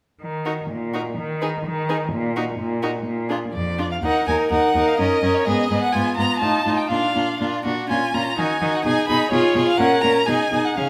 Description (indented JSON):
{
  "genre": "quick classical-period movement for string quartet",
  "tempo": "125 BPM",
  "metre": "2/4",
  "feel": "rubato",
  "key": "Eb minor",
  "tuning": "A4 = 440 Hz",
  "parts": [
    { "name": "rich cello", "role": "bass", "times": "0.2-10.9 s", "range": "Eb2 to Eb3", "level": "-28 LUFS", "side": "equal", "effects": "none" },
    { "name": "rich violin", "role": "melody", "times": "0.5-10.9 s", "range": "Ab4 to B5", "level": "-26 LUFS", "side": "equal", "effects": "none" },
    { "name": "rich violin", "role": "second line", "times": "0.5-10.9 s", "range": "F4 to Bb4", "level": "-26 LUFS", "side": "equal", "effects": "none" },
    { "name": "clear viola", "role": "accompaniment", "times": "0.5-10.9 s", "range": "Cb4 to E#4", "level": "-26 LUFS", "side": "equal", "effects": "none" }
  ],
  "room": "wet recital hall reverb, RT60 1.5 s",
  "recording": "none",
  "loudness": "-21 LUFS",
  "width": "mono",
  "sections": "0.2-4.0 A section; 4.0-10.9 B section",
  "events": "none",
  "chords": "0.2 Eb5; 1.2 N.C.; 2.1 Eb5/Bb; 3.1 Bb; 4.0 Eb5; 5.0 Gb; 5.5 Abm; 6.4 F7/A; 6.9 Bb; 7.9 A#m; 8.4 D#m; 8.9 G#m/B; 9.3 C#7; 9.8 F#; 10.3 G#m/B"
}